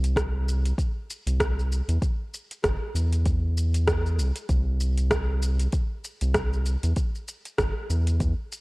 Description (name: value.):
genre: organic downtempo.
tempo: 97 BPM.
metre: 4/4.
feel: swing 58% on 16ths.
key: C major.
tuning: A4 = 439 Hz.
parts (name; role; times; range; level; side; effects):
round analog bass; bass; 0.0-8.3 s; G1 to E2; -23 LUFS; equal; transformer saturation.
deep house drum kit; drums; 0.0-8.6 s; hi-hat, rim click, shaker; -30 LUFS; equal; overdrive, studio reverb.
electronic kick drum; drums; 0.2-8.3 s; none; -27 LUFS; equal; studio reverb.
room: digital ambience.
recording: worn, warbling old tape, cassette tape, warbly pitch drift.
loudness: -23 LUFS.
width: side -23 dB against mid.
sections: 0.0-8.6 A section.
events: none.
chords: none.